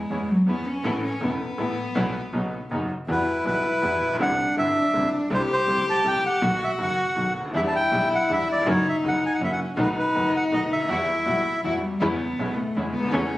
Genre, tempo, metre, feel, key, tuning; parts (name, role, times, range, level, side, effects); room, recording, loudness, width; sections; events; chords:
tango; 161 BPM; 3/4; rubato; E minor from 3.1 s; A4 = 440 Hz
warm cello; second line; 0.0-13.4 s; F#3 to G4; -26 LUFS; left 2 dB
bright upright piano; accompaniment; 0.1-13.3 s; E1 to A4; -29 LUFS; equal
muted studio string section; stabs; 0.1-2.9, 7.5-13.3 s; F#3 to F#4; -31 LUFS; equal
dark double bass; bass; 0.1-13.3 s; E1 to E2; -33 LUFS; equal
bandoneon; melody; 3.1-11.6 s; B4 to A5; -24 LUFS; right 1 dB
light reverb; recorded on a phone in the room, club reverb, compression; -21 LUFS; side -16 dB against mid
0.0-3.1 A section; 3.1-12.0 B section; 12.0-13.4 A section
cello solo 0.0-3.1, 12.0-13.4
0.0 C#m7/E; 0.8 Asus2; 2.0 Bsus4; 2.3 Badd9; 3.1 Emadd9; 4.2 Cadd9; 5.3 Am7/C; 6.4 B; 7.5 Em7; 8.7 F#7; 9.8 B7; 10.9 Emadd9; 12.0 E6